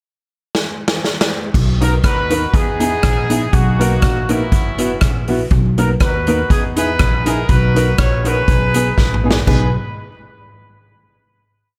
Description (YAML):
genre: ska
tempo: 121 BPM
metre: 4/4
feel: swing 54% on 8ths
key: B major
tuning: A4 = 440 Hz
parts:
  - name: street-band drum kit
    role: drums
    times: 0.5-9.6 s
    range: crash cymbal, hi-hat, kick drum, rim click, snare drum, toms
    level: -19 LUFS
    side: equal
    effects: none
  - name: upright bass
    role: bass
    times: 1.5-9.7 s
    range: F#1 to E2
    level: -20 LUFS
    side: equal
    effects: none
  - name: warm horn section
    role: melody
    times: 1.8-9.7 s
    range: A#3 to C#5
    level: -23 LUFS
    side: equal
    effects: tape echo
  - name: mellow electric guitar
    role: accompaniment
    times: 1.8-9.6 s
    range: A#3 to B4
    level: -26 LUFS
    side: equal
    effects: spring reverb
  - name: clear upright piano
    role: stabs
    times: 1.8-9.7 s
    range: B3 to A#4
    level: -24 LUFS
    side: equal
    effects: none
room: light reverb, small room ambience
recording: none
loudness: -16 LUFS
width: mono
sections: 0.0-1.5 pickup bar; 1.5-9.5 A section; 9.5-11.5 final chord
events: drum fill 0.5-1.5, 9.0-9.5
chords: 0.0 N.C.; 1.5 Bmaj7; 2.5 Emaj7; 3.5 Bmaj7; 4.5 F#7sus4; 5.5 Bmaj7; 6.5 Emaj7; 7.5 Bmaj7; 8.5 B6